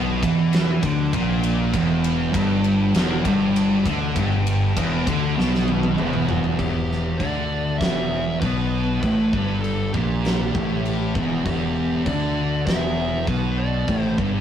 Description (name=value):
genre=stoner and doom metal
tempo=99 BPM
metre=4/4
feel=straight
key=E minor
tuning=A4 = 441 Hz
part: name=heavy high-gain guitar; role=riff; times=0.0-6.6 s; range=E2 to E3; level=-30 LUFS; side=right 1 dB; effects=distortion
part: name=thick fuzz guitar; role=riff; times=0.0-14.4 s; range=E2 to E3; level=-24 LUFS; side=left 4 dB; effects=distortion
part: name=thick fuzz guitar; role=riff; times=0.0-14.4 s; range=E2 to E3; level=-25 LUFS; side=right 5 dB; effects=distortion
part: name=fuzz fingered electric bass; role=bass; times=0.0-14.4 s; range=E1 to E2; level=-26 LUFS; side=equal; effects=overdrive
part: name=big rock drum kit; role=drums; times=0.2-14.3 s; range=crash cymbal, kick drum, ride cymbal, snare drum, toms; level=-26 LUFS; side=equal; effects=none
part: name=fuzz lead guitar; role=melody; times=6.6-14.1 s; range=G4 to E5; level=-29 LUFS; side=equal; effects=distortion
room=moderate small room reverb, RT60 0.5 s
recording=rough rehearsal-room recording, warm saturation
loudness=-19 LUFS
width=side -9 dB against mid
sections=0.0-6.6 A section; 6.6-14.4 B section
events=drum fill 5.4-6.6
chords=0.0 Em